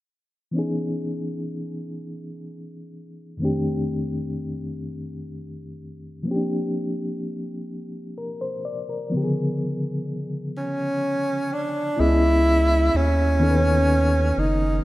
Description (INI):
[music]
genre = slow six-eight R&B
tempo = 42 BPM (dotted quarters)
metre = 6/8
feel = straight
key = unclear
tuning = A4 = 441 Hz
[part]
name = mellow reed electric piano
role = accompaniment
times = 0.5-14.8 s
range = F2 to D#5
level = -26 LUFS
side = left 1 dB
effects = fast tremolo
[part]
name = breathy tenor saxophone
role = melody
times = 10.6-14.8 s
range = C#4 to E4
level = -21 LUFS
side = right 1 dB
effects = slapback echo
[part]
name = round analog bass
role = bass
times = 12.0-14.8 s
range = F#1 to D#2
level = -21 LUFS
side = equal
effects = none
[sound]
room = light reverb, small room ambience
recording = rough home demo mix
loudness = -21 LUFS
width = side -17 dB against mid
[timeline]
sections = 0.6-12.0 A section; 12.0-14.8 B section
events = none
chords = 0.6 C#m9; 3.4 F13; 6.3 A#69; 9.1 C#7b9; 12.0 C#m9